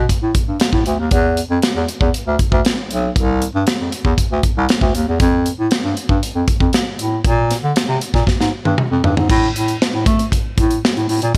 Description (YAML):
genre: polished 1980s jazz-funk pop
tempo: 117 BPM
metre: 4/4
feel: straight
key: unclear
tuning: A4 = 440 Hz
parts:
  - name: clear bass clarinet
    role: bass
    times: 0.0-11.4 s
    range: B1 to A3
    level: -19 LUFS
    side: equal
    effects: none
  - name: modern studio drum kit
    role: drums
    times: 0.1-11.4 s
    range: crash cymbal, hi-hat, kick drum, snare drum, toms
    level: -19 LUFS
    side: equal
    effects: none
room: light reverb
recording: none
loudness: -17 LUFS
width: mono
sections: 0.0-9.3 A section; 9.3-11.4 B section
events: drum fill 8.3-9.3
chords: none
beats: 0.09 0.60 | 1.11 1.62 2.13 2.64 | 3.15 3.67 4.18 4.69 | 5.20 5.71 6.22 6.73 | 7.25 7.76 8.27 8.78 | 9.29 9.81 10.32 10.83 | 11.34